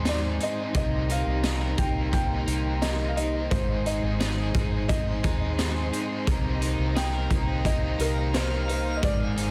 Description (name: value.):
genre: dream pop.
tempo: 87 BPM.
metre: 4/4.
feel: straight.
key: C minor.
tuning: A4 = 440 Hz.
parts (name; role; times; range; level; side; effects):
felt-muted upright piano; melody; 0.0-9.5 s; Bb4 to G5; -35 LUFS; equal; digital delay.
overdriven electric guitar; accompaniment; 0.0-9.5 s; Ab2 to Bb4; -37 LUFS; equal; harmonic tremolo, subtle chorus.
ensemble organ-string; sustained chords; 0.0-9.5 s; Eb4 to C6; -37 LUFS; equal; ensemble chorus.
electric guitar at the edge of break-up; arpeggios; 0.0-9.5 s; Ab2 to Bb4; -36 LUFS; equal; subtle chorus, digital delay.
vintage muted fingered electric bass; bass; 0.0-9.5 s; Ab1 to Eb2; -31 LUFS; equal; none.
raw garage drum kit; drums; 0.1-9.5 s; hi-hat, kick drum, snare drum, tambourine; -31 LUFS; equal; none.
twinkling granular texture; texture; 6.6-9.5 s; F5 to Ab5; -42 LUFS; equal; built-in reverb, digital delay.
room: light reverb, small room ambience.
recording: dense, heavily limited modern master.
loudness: -26 LUFS.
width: mono.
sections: 0.0-9.5 A section.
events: none.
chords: 0.0 Ab; 0.8 Cm7; 3.5 Ab; 6.3 Cm7.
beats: 0.06 | 0.75 1.44 2.13 2.82 | 3.51 4.20 4.89 5.58 | 6.27 6.96 7.65 8.34 | 9.03.